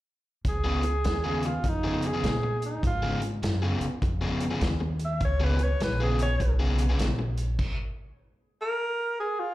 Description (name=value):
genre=electric blues shuffle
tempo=101 BPM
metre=4/4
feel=swing 64% on 8ths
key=Db mixolydian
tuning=A4 = 444 Hz
part: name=upright bass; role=bass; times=0.4-7.6 s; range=Bb1 to Bb2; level=-28 LUFS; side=equal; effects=none
part: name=vintage drum kit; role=drums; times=0.4-7.8 s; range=crash cymbal, hi-hat, kick drum, snare drum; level=-32 LUFS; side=equal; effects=none
part: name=breathy tenor saxophone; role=melody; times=0.5-9.5 s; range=Eb4 to Fb5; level=-30 LUFS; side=right 1 dB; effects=slapback echo, analog delay
part: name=crunchy overdriven guitar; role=riff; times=0.6-7.2 s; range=Db3 to Ab4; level=-31 LUFS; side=left 2 dB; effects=slapback echo
room=light reverb, small room ambience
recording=live gig heard through the venue's PA, club reverb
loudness=-25 LUFS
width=side -16 dB against mid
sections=0.5-9.5 A section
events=stop 7.6-9.5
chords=0.5 Db7; 7.6 N.C.